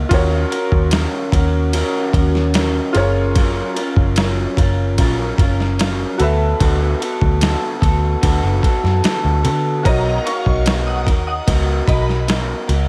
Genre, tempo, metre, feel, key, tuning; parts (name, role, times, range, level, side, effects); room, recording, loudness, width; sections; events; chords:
indie pop, bedroom pop; 74 BPM; 4/4; straight; F# major; A4 = 442 Hz
clear upright piano; accompaniment; 0.0-12.9 s; E#4 to E5; -27 LUFS; equal; cassette tape, plate reverb
electric guitar through a small old amp; accompaniment; 0.0-12.9 s; D3 to A#4; -23 LUFS; equal; lush chorus, warbly pitch drift, plate reverb
vintage muted picked electric bass; bass; 0.0-12.9 s; F#1 to D3; -20 LUFS; equal
boom bap sampler-style drum kit; drums; 0.1-12.9 s; kick drum, ride cymbal, snare drum; -22 LUFS; equal
shimmering bell with halo; second line; 9.9-12.1 s; D#5 to D#6; -27 LUFS; equal; ensemble chorus, tape echo, plate reverb
light reverb; -17 LUFS; mono
0.0-12.9 A section
0.1 D#m7; 3.0 F#maj7; 6.2 D6; 9.8 Bmaj7